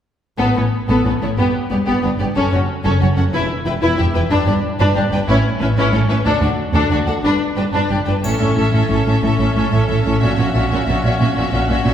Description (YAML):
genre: cinematic, heroic adventure film score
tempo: 122 BPM (dotted quarters)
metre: 12/8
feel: straight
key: A mixolydian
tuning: A4 = 443 Hz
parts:
  - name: clear studio violin section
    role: melody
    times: 0.4-11.9 s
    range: G4 to G5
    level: -26 LUFS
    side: left 4 dB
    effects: none
  - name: clear symphonic violin section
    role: second line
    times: 0.4-11.9 s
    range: B3 to B4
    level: -23 LUFS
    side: left 2 dB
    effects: none
  - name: clear symphonic viola section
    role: accompaniment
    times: 0.4-11.9 s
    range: B3 to E4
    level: -20 LUFS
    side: equal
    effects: none
  - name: rich symphonic cello section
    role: bass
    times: 0.4-11.9 s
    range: D2 to A#2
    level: -20 LUFS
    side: right 1 dB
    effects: none
  - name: rich symphonic double bass section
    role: bass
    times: 0.4-11.9 s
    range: E1 to D2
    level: -20 LUFS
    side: right 1 dB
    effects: none
  - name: triangle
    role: percussion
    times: 8.2-8.9 s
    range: none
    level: -35 LUFS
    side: left 2 dB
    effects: none
room: wet scoring stage reverb, RT60 1.9 s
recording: heard from further back in the room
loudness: -14 LUFS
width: side -9 dB against mid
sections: 0.4-8.2 A section; 8.2-11.9 B section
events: build-up 8.2-11.9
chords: 0.4 Asus2; 1.4 G; 2.4 F#m; 3.3 Em; 4.3 G; 5.3 Aadd9; 6.3 D5; 7.2 G; 8.2 A; 10.2 F#7/A#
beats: | 0.39 0.89 1.38 1.87 | 2.36 2.85 3.33 3.82 | 4.31 4.80 5.28 5.77 | 6.26 6.75 7.24 7.74 | 8.24 8.74 9.23 9.72 | 10.21 10.70 11.20 11.69